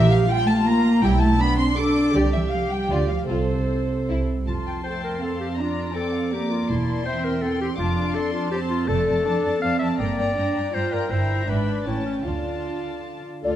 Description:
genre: quick classical-period movement for symphony orchestra.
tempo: 161 BPM.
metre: 3/4.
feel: rubato.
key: F major, D minor from 8.9 s.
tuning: A4 = 439 Hz.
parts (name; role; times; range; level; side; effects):
rich studio violin section; melody; 0.0-13.6 s; E4 to D6; -35 LUFS; left 4 dB; none.
warm studio violin section; second line; 0.0-13.6 s; A4 to D6; -28 LUFS; left 2 dB; none.
rich studio viola section; accompaniment; 0.0-13.6 s; A3 to A4; -27 LUFS; right 2 dB; none.
dark studio cello section; bass; 0.0-13.6 s; E2 to D4; -25 LUFS; right 1 dB; none.
dark studio double bass section; bass; 0.0-13.6 s; E1 to D2; -25 LUFS; right 2 dB; none.
clear clarinet; second line; 4.5-13.6 s; C#4 to F5; -27 LUFS; left 2 dB; none.
hollow concert flute; second line; 13.4-13.5 s; D5; -23 LUFS; left 2 dB; none.
dark French horn section; sustained chords; 13.4-13.6 s; A3 to F4; -29 LUFS; left 4 dB; none.
room: moderate recital hall reverb, RT60 1.7 s.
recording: dark, warm production.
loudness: -20 LUFS.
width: side -11 dB against mid.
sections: 0.0-4.5 A section; 4.5-13.4 B section.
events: none.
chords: 0.0 Bb5; 1.0 G/B; 2.1 C; 2.9 Dm; 3.3 F/C; 4.5 F; 5.6 Bb/F; 6.7 C7/E; 7.8 F; 8.9 Dm/F; 10.0 Gm; 11.1 Edim/G; 11.5 E7/G#; 11.9 A7; 12.3 Dm.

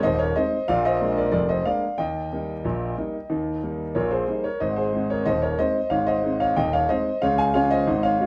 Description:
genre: ragtime piano.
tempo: 92 BPM.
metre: 2/4.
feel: straight.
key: Ab major.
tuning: A4 = 444 Hz.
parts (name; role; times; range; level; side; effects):
clear concert grand piano; solo; 0.0-8.3 s; Eb1 to Ab5; -23 LUFS; equal; none.
room: moderate studio reverb, RT60 0.6 s.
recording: lossy compression artefacts.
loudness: -23 LUFS.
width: mono.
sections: 0.0-8.3 A section.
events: none.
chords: 0.0 Ab; 0.7 Bb7; 2.0 Eb; 4.6 Ab; 7.2 Db.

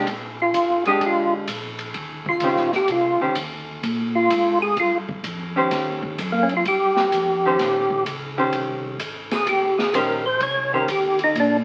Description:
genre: soul jazz organ trio.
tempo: 128 BPM.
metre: 4/4.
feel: swing 66% on 8ths.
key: unclear.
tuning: A4 = 436 Hz.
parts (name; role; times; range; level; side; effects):
archtop guitar, miked and amplified; accompaniment; 0.0-10.9 s; Eb3 to C5; -25 LUFS; equal; none.
mellow tonewheel organ; bass; 0.0-11.6 s; G1 to Bb2; -34 LUFS; equal; chorus vibrato, slow rotary speaker.
swinging big-band drum kit; drums; 0.1-11.5 s; hi-hat, kick drum, ride cymbal, snare drum; -32 LUFS; equal; none.
percussive tonewheel organ; melody; 0.4-11.6 s; Bb3 to Db5; -22 LUFS; equal; chorus vibrato, slow rotary speaker.
room: moderate studio reverb, RT60 0.7 s.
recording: very old 78 rpm record, vinyl crackle.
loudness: -22 LUFS.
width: mono.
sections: 0.0-11.6 A section.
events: tonewheel organ solo 0.0-11.6.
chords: 0.0 Bb13; 2.0 Eb13; 3.8 Bb5; 5.7 Eb13.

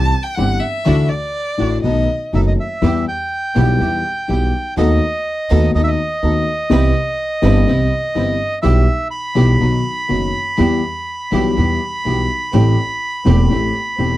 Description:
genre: tango.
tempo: 124 BPM.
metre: 4/4.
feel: rubato.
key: E harmonic minor.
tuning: A4 = 440 Hz.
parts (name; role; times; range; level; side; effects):
warm violin; second line; 0.0-2.3 s; D5 to A5; -21 LUFS; equal; none.
dark concert grand piano; accompaniment; 0.0-14.2 s; E1 to G4; -17 LUFS; left 3 dB; none.
bright studio string section; stabs; 0.0-14.2 s; A3 to B4; -27 LUFS; right 5 dB; none.
upright bass; bass; 0.0-14.2 s; E1 to E2; -17 LUFS; right 1 dB; none.
bandoneon; melody; 2.3-14.2 s; D#5 to B5; -21 LUFS; right 2 dB; none.
room: little or no reverb.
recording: dry, close 1970s-style studio recording.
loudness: -14 LUFS.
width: side -15 dB against mid.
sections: 0.0-2.8 A section; 2.8-14.2 B section.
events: violin solo 0.0-2.8.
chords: 0.0 C; 0.9 Dadd9; 1.8 B7; 2.8 Em; 4.8 B7/D#; 6.7 Cmaj7; 8.6 Em/B; 9.6 B; 10.6 Em; 12.5 Am7.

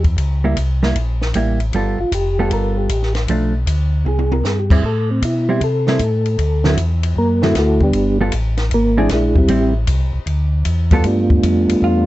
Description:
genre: soul jazz organ trio.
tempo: 155 BPM.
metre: 4/4.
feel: swing 67% on 8ths.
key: G mixolydian.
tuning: A4 = 441 Hz.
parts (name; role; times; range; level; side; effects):
percussive tonewheel organ; melody; 0.0-12.1 s; G3 to Bb4; -18 LUFS; equal; slow rotary speaker, chorus vibrato.
mellow tonewheel organ; bass; 0.0-12.1 s; F1 to C3; -18 LUFS; equal; slow rotary speaker.
compact cocktail drum kit; drums; 0.0-11.9 s; crash cymbal, hi-hat, kick drum, ride cymbal, snare drum, toms; -20 LUFS; left 1 dB; none.
hollow-body jazz guitar; accompaniment; 0.4-12.1 s; D3 to A4; -19 LUFS; right 3 dB; none.
room: light reverb.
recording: dark, warm production, nothing above 8.0 kHz.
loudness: -14 LUFS.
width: side -16 dB against mid.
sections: 0.0-11.0 A section; 11.0-12.1 A section.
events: tonewheel organ solo 0.0-11.0; drum fill 4.1-4.4; hollow-body jazz guitar solo 11.0-12.1.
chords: 0.2 C#dim7; 1.7 G9; 3.3 Bm7b5; 4.1 C(b13); 4.8 Am7; 6.4 D9; 7.9 G9; 8.7 E7alt; 9.5 Am7; 10.3 G9.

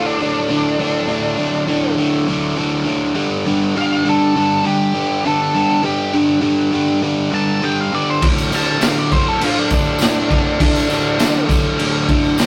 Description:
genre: garage rock duo or trio.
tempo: 101 BPM.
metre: 4/4.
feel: straight.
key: unclear.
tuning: A4 = 442 Hz.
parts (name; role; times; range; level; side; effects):
octave-fuzz lead guitar; melody; 0.0-11.5 s; D4 to A5; -23 LUFS; equal; distortion.
biting overdriven guitar; riff; 0.0-12.5 s; D2 to G3; -19 LUFS; equal; none.
raw garage drum kit; drums; 8.2-12.5 s; crash cymbal, kick drum, snare drum; -19 LUFS; equal; none.
tambourine; percussion; 8.4-12.5 s; none; -35 LUFS; equal; none.
room: light reverb.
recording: rough rehearsal-room recording.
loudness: -17 LUFS.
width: mono.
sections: 0.0-12.5 A section.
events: none.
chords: 0.0 D5; 3.2 G5; 8.2 D5.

